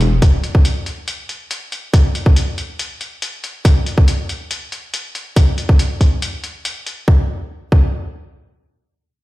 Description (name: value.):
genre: deep dubstep.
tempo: 140 BPM.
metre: 4/4.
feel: half-time.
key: none.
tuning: none.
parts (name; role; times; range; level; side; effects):
electronic hi-hat; drums; 0.0-7.0 s; none; -25 LUFS; left 2 dB; none.
electronic kick drum; drums; 0.2-7.9 s; none; -12 LUFS; equal; none.
room: little or no reverb.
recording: played on a big sound system in a bare room, stone room reverb.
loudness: -15 LUFS.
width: side -18 dB against mid.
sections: 0.0-7.1 A section; 7.1-9.2 B section.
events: none.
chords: none.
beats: | 0.22 0.65 1.08 1.51 | 1.94 2.36 2.79 3.22 | 3.65 4.08 4.51 4.93 | 5.36 5.79 6.22 6.65 | 7.08 7.51.